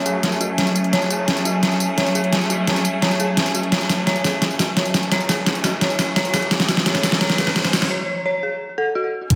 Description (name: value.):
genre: dark technical drum and bass.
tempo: 172 BPM.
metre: 4/4.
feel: straight.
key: F# minor.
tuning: A4 = 441 Hz.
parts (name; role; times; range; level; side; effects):
rich studio string section; sustained chords; 0.0-9.4 s; F#3 to G#5; -26 LUFS; equal; sidechain pumping, low-pass filter.
detuned saw bass; bass; 0.0-9.4 s; F#1 to F#2; -35 LUFS; equal; none.
dark detuned synth bell; arpeggios; 0.1-9.0 s; F#4 to C#5; -27 LUFS; equal; chorus, sidechain pumping, low-pass filter, tape echo.
dubstep drum kit; drums; 0.1-9.4 s; hi-hat, snare drum, tambourine; -22 LUFS; equal; overdrive.
riser and sub drop; sound effects; 5.4-9.4 s; none; -33 LUFS; equal; none.
electronic kick drum; drums; 9.3-9.4 s; none; -16 LUFS; equal; none.
room: wet plate reverb, RT60 1.5 s, digital ambience.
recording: dreamy mix soaked in reverb.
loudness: -20 LUFS.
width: mono.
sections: 0.0-9.3 A section.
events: build-up 0.0-9.3; drum fill 0.0-7.9; break 7.9-9.3.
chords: 0.0 F#madd9.